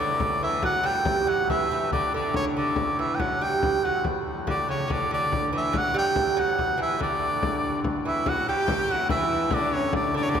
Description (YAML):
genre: medieval dance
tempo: 94 BPM (dotted quarters)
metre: 6/8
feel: straight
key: D major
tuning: A4 = 440 Hz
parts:
  - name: edgy shawm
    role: melody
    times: 0.0-10.4 s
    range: C#5 to G5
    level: -25 LUFS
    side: equal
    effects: none
  - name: lute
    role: second line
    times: 0.0-10.4 s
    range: C#3 to G3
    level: -28 LUFS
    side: right 4 dB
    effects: none
  - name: chamber organ, soft reed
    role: drone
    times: 0.0-10.4 s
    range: D2 to A2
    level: -35 LUFS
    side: left 1 dB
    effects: none
  - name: frame drum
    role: percussion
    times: 0.2-10.4 s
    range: none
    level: -31 LUFS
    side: left 2 dB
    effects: none
  - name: rich fiddle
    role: second line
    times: 8.1-10.4 s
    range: C#4 to G4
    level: -31 LUFS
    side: left 2 dB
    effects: none
room: wet cathedral reverb, RT60 5.6 s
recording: recorded in a church or concert hall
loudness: -22 LUFS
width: side -8 dB against mid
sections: 0.0-8.3 A section; 8.3-10.4 A section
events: none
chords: none